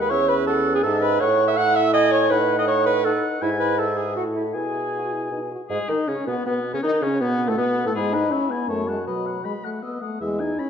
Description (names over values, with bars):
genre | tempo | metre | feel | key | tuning
quick classical-period movement for wind quintet | 161 BPM | 3/4 | straight | unclear | A4 = 437 Hz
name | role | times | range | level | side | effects
mellow hollow silver concert flute | melody | 0.0-10.2 s | C#4 to F#6 | -29 LUFS | left 10 dB | none
warm oboe | second line | 0.0-10.7 s | B3 to B5 | -30 LUFS | left 4 dB | none
clear French horn | accompaniment | 0.0-10.7 s | F#3 to F#4 | -26 LUFS | left 2 dB | none
warm clarinet | accompaniment | 0.0-10.7 s | G#3 to F#5 | -23 LUFS | right 5 dB | none
dark bassoon | bass | 0.0-10.5 s | D#2 to D#3 | -26 LUFS | right 1 dB | none
room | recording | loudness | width
wet recital hall reverb, RT60 1.6 s | dark, warm production | -19 LUFS | side -7 dB against mid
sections
0.0-5.7 A section; 5.7-10.7 B section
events
none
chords
0.1 C#m/E; 1.2 F#m7/A; 2.3 B9/A; 3.4 E/G#; 4.2 F#m7/A; 4.5 E/B; 5.3 B; 5.7 G#madd11; 6.8 B9; 7.9 E/G#; 8.7 F#m; 9.1 B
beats
| 0.10 0.47 0.84 | 1.21 1.58 1.94 | 2.31 2.68 3.05 | 3.42 3.79 4.16 | 4.54 4.93 5.31 | 5.69 6.08 6.46 | 6.83 7.21 7.58 | 7.95 8.32 8.69 | 9.07 9.45 9.83 | 10.21 10.59